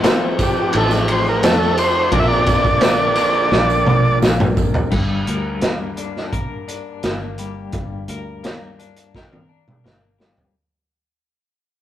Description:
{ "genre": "psychedelic rock", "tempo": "86 BPM", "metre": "4/4", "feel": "straight", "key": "G minor", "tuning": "A4 = 439 Hz", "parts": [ { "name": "tonewheel organ", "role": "sustained chords", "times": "0.0-4.9 s", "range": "F3 to Bb4", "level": "-28 LUFS", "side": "right 4 dB", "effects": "slow rotary speaker" }, { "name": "twelve-string electric guitar", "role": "riff", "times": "0.0-10.6 s", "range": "G2 to Bb4", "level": "-26 LUFS", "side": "left 5 dB", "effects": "tremolo" }, { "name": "fingered electric bass", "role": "bass", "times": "0.0-10.5 s", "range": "G1 to F2", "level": "-24 LUFS", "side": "equal", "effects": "none" }, { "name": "crunchy breakbeat drum kit", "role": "drums", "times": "0.0-10.5 s", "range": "crash cymbal, hi-hat, kick drum, ride cymbal, snare drum, toms", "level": "-18 LUFS", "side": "equal", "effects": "none" }, { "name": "tambourine", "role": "percussion", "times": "0.0-4.8 s", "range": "none", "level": "-40 LUFS", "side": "right 7 dB", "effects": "none" }, { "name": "overdriven combo organ", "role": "melody", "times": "0.4-4.2 s", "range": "G4 to E5", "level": "-18 LUFS", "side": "right 1 dB", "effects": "none" } ], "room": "moderate stone room reverb, RT60 1.3 s", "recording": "rough rehearsal-room recording, warm saturation", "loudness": "-15 LUFS", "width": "side -12 dB against mid", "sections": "0.0-4.9 A section; 4.9-10.5 B section", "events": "drum fill 3.5-4.9, 9.1-10.5; fade-out 4.9-10.5", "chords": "0.0 F/A; 2.1 Bb; 4.9 Gm" }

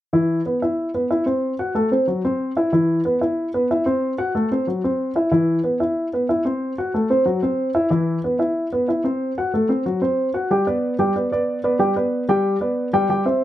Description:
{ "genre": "jazz", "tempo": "185 BPM", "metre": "4/4", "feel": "straight", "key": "G major", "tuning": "A4 = 440 Hz", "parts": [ { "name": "dark baby grand piano", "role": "solo", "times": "0.1-13.4 s", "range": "E3 to G5", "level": "-18 LUFS", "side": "equal", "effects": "none" } ], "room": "light reverb", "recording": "dark, warm production", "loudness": "-18 LUFS", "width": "side -13 dB against mid", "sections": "0.1-10.5 A section; 10.5-13.4 B section", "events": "none", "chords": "0.1 Cmaj7/E; 1.4 F#m7b5; 2.7 Cmaj7/E; 4.0 F#m7b5; 5.3 Cmaj7/E; 6.6 F#m7b5; 7.9 Cmaj7/E; 9.2 F#dim; 10.5 G" }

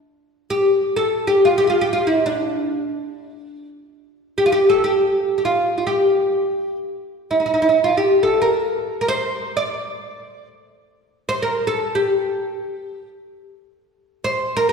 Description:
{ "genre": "Arabic maqam ensemble", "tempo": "free time", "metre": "none", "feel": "none", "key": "unclear", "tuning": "A4 = 440 Hz", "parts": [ { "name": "oud", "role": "solo", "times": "0.5-14.7 s", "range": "D4 to D5", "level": "-17 LUFS", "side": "equal", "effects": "none" } ], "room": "wet scoring stage reverb, RT60 2.0 s", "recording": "recorded in a church or concert hall", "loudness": "-17 LUFS", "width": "side -5 dB against mid", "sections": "0.0-14.7 A section", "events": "none", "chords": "none" }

